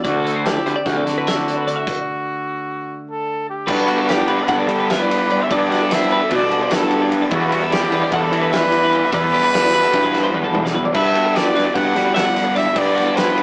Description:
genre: math rock and midwest emo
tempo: 297 BPM (eighths)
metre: 9/8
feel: straight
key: G major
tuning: A4 = 440 Hz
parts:
  - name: twelve-string electric guitar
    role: accompaniment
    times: 0.0-13.4 s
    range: D2 to F#4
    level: -26 LUFS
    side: equal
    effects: none
  - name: twelve-string electric guitar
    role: arpeggios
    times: 0.0-13.4 s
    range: F#4 to F#5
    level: -23 LUFS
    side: left 1 dB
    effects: phaser
  - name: fuzz picked electric bass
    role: bass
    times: 0.0-13.4 s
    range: D2 to G3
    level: -21 LUFS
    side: equal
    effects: overdrive
  - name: loose indie drum kit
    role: drums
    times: 0.0-13.4 s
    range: crash cymbal, hi-hat, kick drum, ride cymbal, snare drum, toms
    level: -23 LUFS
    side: equal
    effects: none
  - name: clear trumpet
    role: melody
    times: 0.1-13.4 s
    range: F#4 to F#5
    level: -20 LUFS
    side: equal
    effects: none
  - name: cranked stack guitar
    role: riff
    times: 3.7-13.4 s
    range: G2 to E4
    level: -23 LUFS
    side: equal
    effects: overdrive, tremolo
room: moderate studio reverb, RT60 0.6 s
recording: rough rehearsal-room recording, tube saturation, small speaker sound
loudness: -15 LUFS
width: side -29 dB against mid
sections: 0.0-3.7 A section; 3.7-13.4 B section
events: stop 1.9-3.7; drum fill 10.3-11.0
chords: 0.0 D7; 3.7 Gmaj9; 7.3 Em9; 11.0 Gmaj7

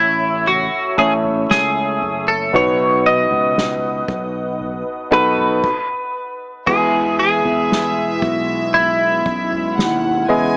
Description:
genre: pop ballad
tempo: 58 BPM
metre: 4/4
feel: straight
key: E major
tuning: A4 = 443 Hz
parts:
  - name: twelve-string electric guitar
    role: melody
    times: 0.0-10.6 s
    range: E4 to D#5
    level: -20 LUFS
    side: equal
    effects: lush chorus
  - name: clear concert grand piano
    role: accompaniment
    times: 0.0-10.6 s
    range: A2 to D#5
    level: -23 LUFS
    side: equal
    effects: none
  - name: glassy FM pad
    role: sustained chords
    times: 0.0-10.6 s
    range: B2 to E6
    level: -29 LUFS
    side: equal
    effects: ensemble chorus, built-in reverb
  - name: fretless electric bass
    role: bass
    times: 0.0-10.6 s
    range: F#1 to E2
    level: -28 LUFS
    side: equal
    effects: none
  - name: soft-mallet drum kit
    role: drums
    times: 0.5-10.5 s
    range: crash cymbal, kick drum, snare drum, toms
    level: -28 LUFS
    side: equal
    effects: none
  - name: warm studio violin section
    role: second line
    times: 6.7-10.6 s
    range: E5 to G#5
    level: -26 LUFS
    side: equal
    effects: tape echo
room: light reverb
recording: small speaker sound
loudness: -17 LUFS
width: mono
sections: 0.0-6.7 A section; 6.7-10.6 B section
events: stop 5.6-6.7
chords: 0.0 A; 2.5 B; 6.7 Emaj7

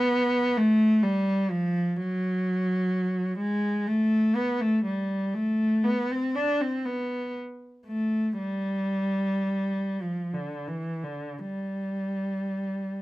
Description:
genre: classical, free, expressive piece for unaccompanied cello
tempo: 41-66 BPM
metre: 3/4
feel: rubato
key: unclear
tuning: A4 = 437 Hz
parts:
  - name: warm cello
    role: solo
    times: 0.0-13.0 s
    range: D3 to D4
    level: -24 LUFS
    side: equal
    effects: none
room: light reverb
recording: close, detailed microphones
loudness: -24 LUFS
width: side -18 dB against mid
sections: 0.0-13.0 A section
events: none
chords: none

